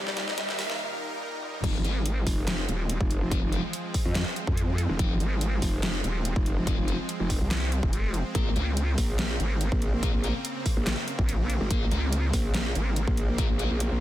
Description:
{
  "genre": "heavy wobble dubstep",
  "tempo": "143 BPM",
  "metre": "4/4",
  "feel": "half-time",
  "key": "F minor",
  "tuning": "A4 = 440 Hz",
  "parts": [
    { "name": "warm cello", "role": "melody", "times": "0.0-0.8 s", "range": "G3", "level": "-40 LUFS", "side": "equal", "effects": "tape echo" },
    { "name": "supersaw pad", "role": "sustained chords", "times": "0.0-14.0 s", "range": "Eb2 to Bb4", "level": "-36 LUFS", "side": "right 1 dB", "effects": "sidechain pumping" },
    { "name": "riser", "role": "sound effects", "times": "0.0-0.8 s", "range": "none", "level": "-34 LUFS", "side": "left 1 dB", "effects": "none" },
    { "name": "dubstep drum kit", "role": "drums", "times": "0.1-13.9 s", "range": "crash cymbal, handclaps, hi-hat, snare drum, toms", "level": "-33 LUFS", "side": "equal", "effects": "overdrive, high-pass filter on snare, high-pass filter on hats, high-pass filter on toms, high-pass filter on cymbals, high-pass filter on room" },
    { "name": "thick fuzz guitar", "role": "stabs", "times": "1.6-13.7 s", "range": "F3 to Bb4", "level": "-36 LUFS", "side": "left 3 dB", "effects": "distortion, tape echo" },
    { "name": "growl bass", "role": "bass", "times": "1.6-14.0 s", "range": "Eb1 to F2", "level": "-29 LUFS", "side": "equal", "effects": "chorus, overdrive" },
    { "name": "electronic kick drum", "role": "drums", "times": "1.6-13.5 s", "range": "none", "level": "-28 LUFS", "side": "equal", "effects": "none" },
    { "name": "vowel-sweep wobble bass", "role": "bass", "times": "1.8-13.1 s", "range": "Eb1 to F2", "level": "-26 LUFS", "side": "equal", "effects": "chorus, overdrive" }
  ],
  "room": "digital ambience",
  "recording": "dense, heavily limited modern master, high-pass filter",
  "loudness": "-25 LUFS",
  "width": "side -14 dB against mid",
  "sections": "0.0-1.6 A section; 1.6-14.0 B section",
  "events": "build-up 0.0-1.6; drum fill 0.0-0.8, 1.4; riser 0.0-0.8; filter sweep 0.0-1.6; break 0.8-1.6; drop 1.6-14.0",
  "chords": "0.0 Eb; 1.6 Fm; 8.3 Bbmadd9"
}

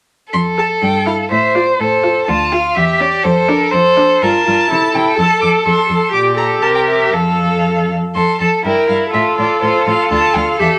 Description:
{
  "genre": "quick classical-period movement for string quartet",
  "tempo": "124 BPM",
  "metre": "2/4",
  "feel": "rubato",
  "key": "F major",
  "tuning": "A4 = 440 Hz",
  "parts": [
    { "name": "warm violin", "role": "melody", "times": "0.3-10.7 s", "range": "A4 to D6", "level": "-20 LUFS", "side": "equal", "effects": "none" },
    { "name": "rich violin", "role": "second line", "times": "0.3-10.8 s", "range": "E4 to C5", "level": "-18 LUFS", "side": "equal", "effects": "none" },
    { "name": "rich cello", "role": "bass", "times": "0.3-10.7 s", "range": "D2 to C3", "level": "-22 LUFS", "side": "equal", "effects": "none" },
    { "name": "warm viola", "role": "accompaniment", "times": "0.6-10.8 s", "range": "Db4 to Bb4", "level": "-19 LUFS", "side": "equal", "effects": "none" }
  ],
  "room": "moderate studio reverb, RT60 0.7 s",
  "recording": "none",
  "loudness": "-14 LUFS",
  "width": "mono",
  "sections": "0.3-8.2 A section; 8.2-10.8 A section",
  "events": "none",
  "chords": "0.3 F; 0.8 Fmaj9/G (rootless); 1.3 F/A; 2.3 Dm; 2.8 Em7; 3.2 Dm/F; 4.2 Gm7; 4.7 C; 5.2 F; 6.1 Gm/Bb; 6.6 C7; 7.1 F; 8.6 Gm6; 9.1 F/A; 10.1 Dm"
}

